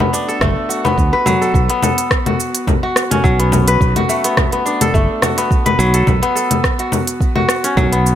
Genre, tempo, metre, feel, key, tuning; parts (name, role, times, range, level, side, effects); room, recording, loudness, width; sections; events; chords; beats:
organic downtempo; 106 BPM; 4/4; swing 54% on 16ths; A4 = 442 Hz
kora; arpeggios; 0.0-8.2 s; F#3 to B4; -16 LUFS; equal; digital delay, shimmer reverb
deep house drum kit; drums; 0.0-8.2 s; congas, hi-hat, rim click, shaker; -18 LUFS; left 2 dB
fretless electric bass; bass; 0.4-8.2 s; F#1 to D2; -16 LUFS; right 1 dB; sidechain pumping
electronic kick drum; drums; 0.4-7.9 s; -17 LUFS; right 1 dB
light reverb; -13 LUFS; side -10 dB against mid
0.0-1.5 A section; 1.5-8.2 B section
0.0 F#madd11; 6.1 Bm9
0.41 0.98 | 1.55 2.11 2.68 3.24 | 3.81 4.38 4.94 5.51 | 6.07 6.64 7.21 7.77